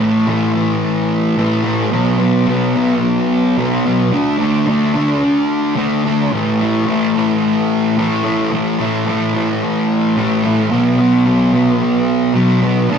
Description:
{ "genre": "rock", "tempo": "109 BPM", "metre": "4/4", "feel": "straight", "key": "unclear", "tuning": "A4 = 441 Hz", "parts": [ { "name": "fuzz guitar", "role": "solo", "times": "0.0-13.0 s", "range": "A2 to D4", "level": "-13 LUFS", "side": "equal", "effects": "distortion" } ], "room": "wet small room reverb, RT60 0.5 s", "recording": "rough rehearsal-room recording, tube saturation", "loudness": "-13 LUFS", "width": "side -7 dB against mid", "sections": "0.0-13.0 A section", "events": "none", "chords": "0.0 A5; 1.9 B5; 4.1 D5; 6.3 A5; 10.7 B5" }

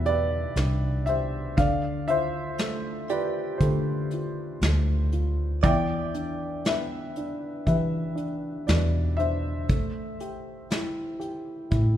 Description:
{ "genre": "acoustic folk-pop ballad", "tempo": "59 BPM", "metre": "4/4", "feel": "straight", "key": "unclear", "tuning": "A4 = 440 Hz", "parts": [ { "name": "dark baby grand piano", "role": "melody", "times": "0.0-12.0 s", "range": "B2 to G5", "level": "-29 LUFS", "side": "equal", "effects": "none" }, { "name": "vintage muted fingered electric bass", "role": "bass", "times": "0.0-12.0 s", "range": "A1 to E3", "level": "-26 LUFS", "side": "equal", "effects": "none" }, { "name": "soft brush drum kit", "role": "drums", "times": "0.1-11.9 s", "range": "hi-hat, kick drum, snare drum", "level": "-26 LUFS", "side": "equal", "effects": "none" }, { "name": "direct-recorded clean electric guitar", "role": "arpeggios", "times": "3.1-9.2 s", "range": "G4 to D5", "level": "-32 LUFS", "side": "right 3 dB", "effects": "tremolo" } ], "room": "moderate concert hall reverb, RT60 2.1 s", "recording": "minimal, uncompressed stereo recording", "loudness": "-24 LUFS", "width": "side -11 dB against mid", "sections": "0.0-12.0 A section", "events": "none", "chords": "0.0 Em7; 1.6 Dm7; 5.6 Em7; 9.7 Am7" }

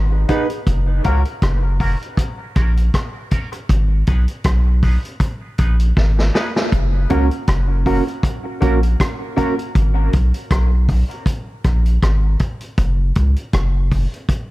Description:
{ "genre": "dub reggae", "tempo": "79 BPM", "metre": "4/4", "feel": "swing 56% on 16ths", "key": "F# major", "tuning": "A4 = 435 Hz", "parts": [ { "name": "soft dub sub bass", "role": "bass", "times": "0.0-14.1 s", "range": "F#1 to C#2", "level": "-15 LUFS", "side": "equal", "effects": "none" }, { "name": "clean electric guitar", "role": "accompaniment", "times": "0.3-9.6 s", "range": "C#4 to B4", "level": "-25 LUFS", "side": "right 7 dB", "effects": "harmonic tremolo, high-pass filter, dub echo" }, { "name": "clear upright piano", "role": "stabs", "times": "0.3-9.5 s", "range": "A#3 to B4", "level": "-27 LUFS", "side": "left 5 dB", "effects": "high-pass filter, dub echo" }, { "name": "vintage drum kit", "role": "drums", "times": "0.3-14.5 s", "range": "hi-hat, kick drum, rim click, snare drum", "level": "-20 LUFS", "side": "equal", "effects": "none" } ], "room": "studio ambience", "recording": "none", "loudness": "-15 LUFS", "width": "side -18 dB against mid", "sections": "0.0-6.7 A section; 6.7-14.5 A section", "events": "filter sweep 0.0-6.7; drum fill 6.0-6.7", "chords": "0.0 G#m; 0.7 F#; 3.7 G#m; 6.7 F#; 9.8 G#m; 12.8 N.C." }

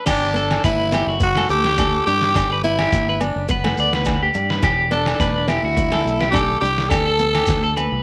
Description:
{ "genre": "highlife guitar band", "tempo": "105 BPM", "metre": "4/4", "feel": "straight", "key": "G major", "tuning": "A4 = 440 Hz", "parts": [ { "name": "electric guitar at the edge of break-up", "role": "arpeggios", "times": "0.0-8.0 s", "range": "F#4 to D5", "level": "-25 LUFS", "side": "equal", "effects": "tremolo, tape echo" }, { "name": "growling tenor saxophone", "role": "melody", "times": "0.1-8.0 s", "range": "B3 to A4", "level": "-23 LUFS", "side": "equal", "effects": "none" }, { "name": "nylon-string guitar", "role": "accompaniment", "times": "0.1-8.0 s", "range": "A3 to E4", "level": "-31 LUFS", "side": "equal", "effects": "none" }, { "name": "fingered electric bass", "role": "bass", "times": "0.1-8.0 s", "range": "E1 to G2", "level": "-27 LUFS", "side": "equal", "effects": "none" }, { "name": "trip hop sampler-style drum kit", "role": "drums", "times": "0.1-7.6 s", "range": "crash cymbal, kick drum, snare drum", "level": "-27 LUFS", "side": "equal", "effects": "none" }, { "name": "agogo bells", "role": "percussion", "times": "0.1-7.9 s", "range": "none", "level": "-32 LUFS", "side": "equal", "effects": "none" }, { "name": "congas", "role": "percussion", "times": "0.1-7.9 s", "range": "none", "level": "-34 LUFS", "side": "equal", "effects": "none" }, { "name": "shekere", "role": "percussion", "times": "0.1-7.9 s", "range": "none", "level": "-31 LUFS", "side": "equal", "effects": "none" } ], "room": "light reverb, small room ambience", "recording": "none", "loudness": "-19 LUFS", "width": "mono", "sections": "0.1-8.0 A section", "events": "none", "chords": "0.1 Gmaj7; 4.6 Em; 6.9 Dsus4" }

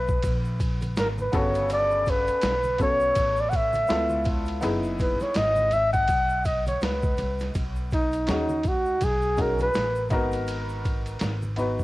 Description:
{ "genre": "hip hop, jazz-hop", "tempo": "82 BPM", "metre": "4/4", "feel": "swing 58% on 16ths", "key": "B major", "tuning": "A4 = 443 Hz", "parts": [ { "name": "breathy flugelhorn", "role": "melody", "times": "0.0-10.1 s", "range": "D#4 to F#5", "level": "-25 LUFS", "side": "equal", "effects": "cassette tape, plate reverb, tape echo" }, { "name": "upright bass", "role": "bass", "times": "0.0-11.8 s", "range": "F#1 to D#2", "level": "-30 LUFS", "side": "equal", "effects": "tube saturation" }, { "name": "boom bap sampler-style drum kit", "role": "drums", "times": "0.1-11.8 s", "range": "hi-hat, kick drum, ride cymbal, snare drum", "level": "-29 LUFS", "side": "equal", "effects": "vintage 12-bit sampler grit, cassette tape" }, { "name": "egg shaker and congas", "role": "percussion", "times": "0.1-11.8 s", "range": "none", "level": "-42 LUFS", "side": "right 1 dB", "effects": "none" }, { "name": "warm upright piano", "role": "accompaniment", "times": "1.3-11.8 s", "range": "C#3 to B4", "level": "-30 LUFS", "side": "left 1 dB", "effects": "cassette tape, plate reverb" } ], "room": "light reverb", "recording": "home recording on cassette", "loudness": "-22 LUFS", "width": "side -18 dB against mid", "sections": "0.0-7.5 A section; 7.5-11.8 B section", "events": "flugelhorn solo 0.0-7.5", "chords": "0.0 G#m; 1.3 Gmaj9#11; 3.9 C#7alt; 4.6 F#13sus4; 7.5 B69; 10.1 G#m7" }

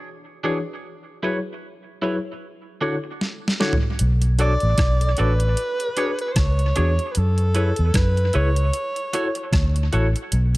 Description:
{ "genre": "lovers rock reggae", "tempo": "76 BPM", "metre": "4/4", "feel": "swing 57% on 16ths", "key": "unclear", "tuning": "A4 = 440 Hz", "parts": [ { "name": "bright tine electric piano", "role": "accompaniment", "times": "0.4-10.1 s", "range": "D3 to C#5", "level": "-28 LUFS", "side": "left 2 dB", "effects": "overdrive, fast tremolo" }, { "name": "twangy electric guitar", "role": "stabs", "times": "0.4-10.2 s", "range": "D4 to D5", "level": "-31 LUFS", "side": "right 3 dB", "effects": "tape echo" }, { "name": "detuned 8-bit digital drum machine", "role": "drums", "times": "3.2-10.6 s", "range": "hi-hat, kick drum, rim click, snare drum, toms", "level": "-23 LUFS", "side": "equal", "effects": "overdrive, tape echo" }, { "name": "vintage muted fingered electric bass", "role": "bass", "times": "4.0-10.6 s", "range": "A1 to F#2", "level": "-19 LUFS", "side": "equal", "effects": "none" }, { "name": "breathy alto saxophone", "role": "melody", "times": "4.4-9.9 s", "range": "A4 to D5", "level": "-26 LUFS", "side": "equal", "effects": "tape echo" } ], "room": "light reverb, digital ambience", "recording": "none", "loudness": "-19 LUFS", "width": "side -19 dB against mid", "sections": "0.0-10.6 A section", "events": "drum fill 3.2-4.0", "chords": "0.0 E13; 0.8 F#7sus4; 2.4 Dmaj7; 4.0 Bm7; 5.6 E13; 7.2 F#7sus4; 8.7 Dmaj7" }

